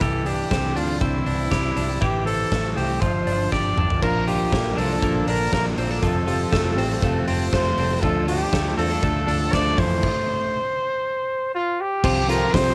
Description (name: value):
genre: jangly indie pop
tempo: 120 BPM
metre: 4/4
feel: straight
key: unclear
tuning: A4 = 440 Hz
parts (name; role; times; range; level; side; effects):
- warm trumpet; melody; 0.0-12.7 s; E4 to D5; -27 LUFS; equal; none
- twelve-string electric guitar; arpeggios; 0.0-12.7 s; E3 to G4; -29 LUFS; equal; cassette tape
- vintage muted fingered electric bass; bass; 0.0-12.7 s; F1 to F2; -28 LUFS; equal; none
- big rock drum kit; drums; 0.0-12.7 s; crash cymbal, hi-hat, kick drum, snare drum, toms; -28 LUFS; equal; cassette tape
- crunchy overdriven guitar; accompaniment; 4.0-12.7 s; Bb2 to Bb4; -36 LUFS; equal; none
- soft electric-piano-like synth keys; accompaniment; 4.0-12.7 s; C4 to C5; -30 LUFS; equal; chorus, cassette tape
room: little or no reverb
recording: home recording on cassette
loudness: -22 LUFS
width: mono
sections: 0.0-4.0 A section; 4.0-12.0 B section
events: drum fill 3.5-4.0; stop 10.0-12.0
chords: 0.0 Cadd9; 2.0 Am7; 3.0 G7sus4; 4.0 Bb; 6.0 F; 8.0 Dm; 9.8 Fmaj7; 12.0 Csus4